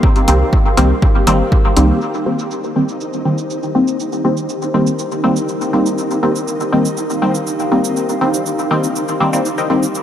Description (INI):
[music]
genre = dub techno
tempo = 121 BPM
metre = 4/4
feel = straight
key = C minor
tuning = A4 = 440 Hz
[part]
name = warbly tape-like pad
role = sustained chords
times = 0.0-10.0 s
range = Eb4 to F5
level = -23 LUFS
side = equal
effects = chorus, built-in reverb, sidechain pumping
[part]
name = filtered dub chord stab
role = stabs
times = 0.0-9.8 s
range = Eb3 to C4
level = -16 LUFS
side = equal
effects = chorus, phaser, sidechain pumping, dub echo
[part]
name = electronic kick drum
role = drums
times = 0.0-1.6 s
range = none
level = -13 LUFS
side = equal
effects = none
[part]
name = flickering grainy texture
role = texture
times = 0.0-10.0 s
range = Eb4 to G4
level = -27 LUFS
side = equal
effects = built-in reverb, sidechain pumping
[part]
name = electronic hi-hat and shaker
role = drums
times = 0.2-10.0 s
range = none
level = -26 LUFS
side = right 3 dB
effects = low-pass filter on hats, low-pass filter on perc, low-pass filter on room
[part]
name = soft dub sub bass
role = bass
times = 0.3-1.9 s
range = G1 to C2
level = -14 LUFS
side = equal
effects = sidechain pumping
[part]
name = filtered dub chord stab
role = riff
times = 0.8-9.7 s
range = Bb4 to G5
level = -29 LUFS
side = left 3 dB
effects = none
[sound]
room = light reverb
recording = none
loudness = -13 LUFS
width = side -10 dB against mid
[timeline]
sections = 0.0-2.0 A section; 2.0-10.0 B section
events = filter sweep on ambient pad 2.0-10.0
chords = 0.0 Cm7